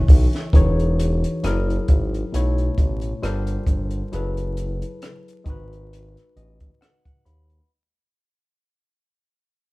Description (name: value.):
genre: R&B, neo-soul.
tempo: 67 BPM.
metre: 4/4.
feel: swing 55% on 16ths.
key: unclear.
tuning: A4 = 438 Hz.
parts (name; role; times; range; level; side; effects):
barky tine electric piano; accompaniment; 0.0-7.7 s; B2 to B5; -27 LUFS; left 2 dB; overdrive.
mellow hollow flute section; sustained chords; 0.0-0.5 s; B4 to C#6; -40 LUFS; right 4 dB; none.
smooth synth bass; bass; 0.1-7.6 s; E1 to D#2; -22 LUFS; equal; none.
compact cocktail drum kit; drums; 0.1-7.7 s; hi-hat, kick drum, rim click, snare drum; -16 LUFS; equal; none.
room: light reverb.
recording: band playing live in one room, vinyl crackle.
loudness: -19 LUFS.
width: side -22 dB against mid.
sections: 0.5-7.7 A section.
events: fade-out 0.5-7.7; tine electric piano fill 5.9-7.7.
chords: 0.0 E6; 0.5 Emaj13; 1.4 F#9; 2.3 B9sus4; 3.2 Gm11; 4.1 F#m11; 5.5 G#m7.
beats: | 0.53 1.42 2.32 3.21 | 4.11 5.01 5.90 6.80.